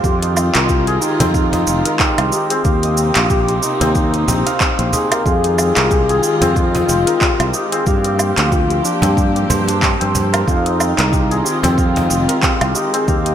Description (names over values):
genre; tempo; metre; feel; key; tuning
organic downtempo; 92 BPM; 4/4; swing 56% on 16ths; F dorian; A4 = 439 Hz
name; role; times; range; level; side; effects
dark duduk; melody; 0.0-13.3 s; C4 to Bb4; -20 LUFS; left 1 dB; digital delay
warm symphonic string section; sustained chords; 0.0-13.3 s; C3 to G4; -24 LUFS; left 1 dB; sidechain pumping
santur; arpeggios; 0.0-13.3 s; C4 to F5; -20 LUFS; equal; ping-pong delay
sustaining fretless electric bass; bass; 0.0-13.3 s; F1 to G2; -18 LUFS; equal; lush chorus
deep house drum kit; drums; 0.0-13.3 s; cabasa, handclaps, hi-hat, woodblock; -20 LUFS; right 1 dB; overdrive
electronic kick drum; drums; 0.0-13.2 s; none; -18 LUFS; equal; none
cajon; percussion; 0.4-12.2 s; none; -23 LUFS; right 1 dB; none
room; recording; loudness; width
moderate plate reverb, RT60 2.0 s; bright 1980s-style digital production; -13 LUFS; side -9 dB against mid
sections
0.0-13.3 A section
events
none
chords
0.0 Fm7; 2.6 Cm7; 5.3 Fm7; 7.9 Gm7; 10.5 Fm7